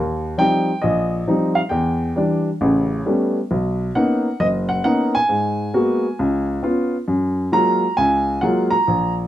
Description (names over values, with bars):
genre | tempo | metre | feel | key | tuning
solo jazz | 134 BPM | 4/4 | swing 66% on 8ths | unclear | A4 = 441 Hz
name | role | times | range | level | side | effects
warm upright piano | solo | 0.0-9.3 s | F#1 to Bb5 | -17 LUFS | equal | none
room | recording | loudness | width
light reverb | dark, warm production | -17 LUFS | side -12 dB against mid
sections
0.0-9.3 A section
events
none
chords
0.0 Eb69; 1.7 Em7; 2.6 A9; 3.5 Bmaj9; 5.3 Abm9; 6.2 Db7; 7.1 Gbmaj9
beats
0.38 0.82 1.27 | 1.72 2.16 2.61 3.06 | 3.50 3.95 4.40 4.84 | 5.29 5.74 6.19 6.63 | 7.08 7.53 7.97 8.42 | 8.87